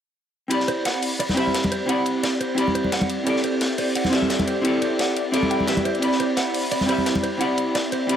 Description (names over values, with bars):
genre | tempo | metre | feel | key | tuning
liquid drum and bass | 174 BPM | 4/4 | swing 54% on 16ths | C lydian | A4 = 439 Hz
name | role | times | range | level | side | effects
vintage hollow-body jazz guitar | accompaniment | 0.5-8.2 s | C4 to B5 | -23 LUFS | equal | dub echo
lush unison pad | sustained chords | 0.5-8.2 s | C4 to B5 | -26 LUFS | equal | chorus, vintage 12-bit sampler grit
crunchy breakbeat drum kit | drums | 0.5-8.2 s | hi-hat, ride cymbal, snare drum | -28 LUFS | equal | high-pass filter on cymbals, high-pass filter on hats, high-pass filter on snare, high-pass filter on room
electronic hi-hat | drums | 0.5-8.2 s | none | -32 LUFS | left 3 dB | none
mellow electric guitar | arpeggios | 0.7-8.1 s | C5 to G5 | -29 LUFS | right 4 dB | tremolo, low-pass filter, dub echo
congas | percussion | 1.3-7.2 s | none | -26 LUFS | left 1 dB | none
room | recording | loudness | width
light reverb, studio reverb | none | -20 LUFS | side -9 dB against mid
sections
0.5-8.2 A section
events
none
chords
0.5 Cmaj9; 3.3 D9sus4; 5.9 Cmaj9